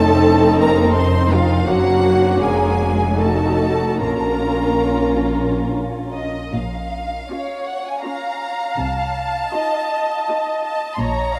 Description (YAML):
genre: classical, slow romantic movement for string orchestra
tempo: 70-85 BPM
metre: 3/4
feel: rubato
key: Bb minor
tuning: A4 = 442 Hz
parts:
  - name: clear symphonic violin section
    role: melody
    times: 0.0-11.4 s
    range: Eb5 to C6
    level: -26 LUFS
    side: equal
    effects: none
  - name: rich studio violin section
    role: second line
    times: 0.0-11.4 s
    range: Bb3 to F5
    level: -24 LUFS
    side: equal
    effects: none
  - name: clear symphonic viola section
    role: accompaniment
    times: 0.0-10.8 s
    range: Db4 to C5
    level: -23 LUFS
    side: equal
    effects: none
  - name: rich symphonic cello section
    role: bass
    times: 0.0-11.4 s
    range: Bb2 to C4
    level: -27 LUFS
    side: equal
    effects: none
  - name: rich symphonic double bass section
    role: bass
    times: 0.0-11.4 s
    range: F1 to C2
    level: -24 LUFS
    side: equal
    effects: none
room: wet cathedral reverb, RT60 6.0 s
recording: in a vast, echoing space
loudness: -19 LUFS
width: mono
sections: 0.0-6.5 A section; 6.5-11.4 A section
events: none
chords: 0.0 F7; 1.7 Gb; 2.4 Bbm/F; 3.2 F7b9; 4.0 Bbm; 8.8 F7/C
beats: 0.22 0.95 | 1.68 2.42 3.19 | 4.02 4.88 5.71 | 6.53 7.29 8.03 | 8.78 9.53 10.27 | 11.00